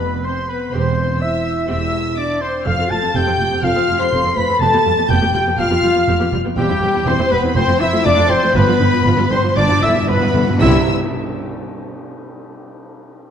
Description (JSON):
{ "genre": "classical, dramatic, fast romantic movement for symphony orchestra", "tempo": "122 BPM", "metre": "4/4", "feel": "rubato", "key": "C major", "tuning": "A4 = 440 Hz", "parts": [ { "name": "warm symphonic violin section", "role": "melody", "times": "0.0-10.9 s", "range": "G5 to C7", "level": "-26 LUFS", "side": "left 4 dB", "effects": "none" }, { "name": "clear oboe", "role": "second line", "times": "0.0-10.8 s", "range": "G4 to C6", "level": "-26 LUFS", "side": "right 2 dB", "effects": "none" }, { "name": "concert flute", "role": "second line", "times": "0.0-10.9 s", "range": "G4 to C6", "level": "-26 LUFS", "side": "left 2 dB", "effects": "none" }, { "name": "warm clarinet", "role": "second line", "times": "0.0-10.8 s", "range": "E4 to C6", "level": "-25 LUFS", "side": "left 1 dB", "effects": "none" }, { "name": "warm symphonic violin section", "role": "second line", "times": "0.0-10.9 s", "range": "G4 to C6", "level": "-27 LUFS", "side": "left 2 dB", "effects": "none" }, { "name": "warm French horn section", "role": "sustained chords", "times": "0.0-10.8 s", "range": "G3 to C5", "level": "-20 LUFS", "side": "left 4 dB", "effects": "none" }, { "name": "bright trumpet section", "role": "stabs", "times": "0.0-10.8 s", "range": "G4 to C6", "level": "-23 LUFS", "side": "right 1 dB", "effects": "none" }, { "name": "dark symphonic cello section", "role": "bass", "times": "0.0-10.9 s", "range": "E2 to C3", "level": "-23 LUFS", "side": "right 2 dB", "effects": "none" }, { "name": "warm symphonic double bass section", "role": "bass", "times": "0.0-10.9 s", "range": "E1 to C2", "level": "-22 LUFS", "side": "right 3 dB", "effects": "none" }, { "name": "warm symphonic viola section", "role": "accompaniment", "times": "0.7-10.9 s", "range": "D3 to A4", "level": "-24 LUFS", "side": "right 1 dB", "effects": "none" }, { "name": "cymbal swell and tam-tam", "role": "percussion", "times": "6.6-12.6 s", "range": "none", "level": "-31 LUFS", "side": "left 1 dB", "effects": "none" }, { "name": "timpani", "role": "percussion", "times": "8.6-10.8 s", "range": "G2 to C3", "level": "-22 LUFS", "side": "left 1 dB", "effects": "none" } ], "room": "wet concert hall reverb, RT60 1.9 s", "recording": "dark, warm production", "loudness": "-14 LUFS", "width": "side -8 dB against mid", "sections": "0.0-10.6 A section; 10.6-12.7 B section", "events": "timpani fill 8.6-10.6; band accent 10.6-11.1", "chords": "0.0 G7/F (rootless); 0.7 C/E; 2.7 Fadd9; 4.6 G7/F; 6.6 C/E; 7.6 Fmaj7; 8.6 G7; 10.6 C", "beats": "0.25 | 0.73 1.22 1.69 2.18 | 2.66 3.15 3.64 4.12 | 4.61 5.10 5.59 6.08 | 6.58 7.07 7.56 8.06 | 8.56 9.06 9.57 10.09 | 10.61 11.12 11.63 12.15" }